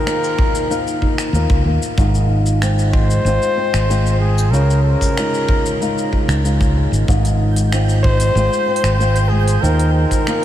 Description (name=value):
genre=folktronica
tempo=94 BPM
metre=4/4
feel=straight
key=Ab major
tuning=A4 = 440 Hz
part: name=warm flugelhorn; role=melody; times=0.0-10.4 s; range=Ab4 to C5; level=-22 LUFS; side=left 1 dB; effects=analog delay
part: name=flamenco guitar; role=arpeggios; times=0.0-10.4 s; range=Ab2 to F4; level=-21 LUFS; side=equal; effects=analog delay
part: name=organic electronic drum kit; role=drums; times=0.1-10.4 s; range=finger snaps, hi-hat, shaker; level=-27 LUFS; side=left 1 dB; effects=none
part: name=kick drum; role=drums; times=0.4-10.2 s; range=none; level=-20 LUFS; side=equal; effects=none
part: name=fingered electric bass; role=bass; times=1.3-10.0 s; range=Ab1 to Eb2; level=-15 LUFS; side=equal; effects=none
part: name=twinkling granular texture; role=texture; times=7.5-10.4 s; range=G5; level=-28 LUFS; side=right 3 dB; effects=built-in reverb
room=moderate huge ambient reverb, RT60 7.2 s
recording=dreamy mix soaked in reverb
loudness=-14 LUFS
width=side -12 dB against mid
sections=0.0-10.4 A section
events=none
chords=0.0 Ebsus2; 2.0 Ab6; 4.5 Dbadd9; 7.1 Ab6; 9.6 Ebsus2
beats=0.06 0.70 1.34 | 1.98 2.61 3.25 3.89 | 4.53 5.17 5.80 6.44 | 7.08 7.72 8.36 9.00 | 9.63 10.27